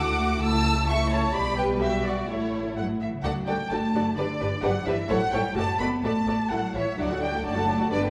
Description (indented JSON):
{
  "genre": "quick classical-period movement for string orchestra",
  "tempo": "128 BPM",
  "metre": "2/4",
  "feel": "straight",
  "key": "D major",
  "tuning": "A4 = 445 Hz",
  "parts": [
    { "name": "dark symphonic violin section", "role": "melody", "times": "0.0-8.0 s", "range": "C#5 to E6", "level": "-31 LUFS", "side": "equal", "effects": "none" },
    { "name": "warm symphonic violin section", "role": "second line", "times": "0.0-8.1 s", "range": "E4 to A5", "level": "-33 LUFS", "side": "equal", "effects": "none" },
    { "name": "warm symphonic viola section", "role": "accompaniment", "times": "0.0-8.1 s", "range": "F#3 to G4", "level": "-32 LUFS", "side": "equal", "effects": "none" },
    { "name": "clear symphonic double bass section", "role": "bass", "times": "0.0-8.1 s", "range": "F#1 to D2", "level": "-34 LUFS", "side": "equal", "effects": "none" },
    { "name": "dark symphonic cello section", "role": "bass", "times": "0.0-8.1 s", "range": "G2 to B3", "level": "-33 LUFS", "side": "equal", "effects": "none" }
  ],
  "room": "wet recital hall reverb, RT60 1.9 s",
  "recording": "none",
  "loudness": "-26 LUFS",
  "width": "mono",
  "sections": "0.0-3.2 A section; 3.2-8.1 B section",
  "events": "none",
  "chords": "0.4 A/C#; 1.3 G/B; 2.3 A; 3.2 D; 3.7 D/F#; 4.2 G; 5.1 A5; 5.6 D; 6.0 D/A; 6.5 A; 7.0 D; 7.5 D/F#"
}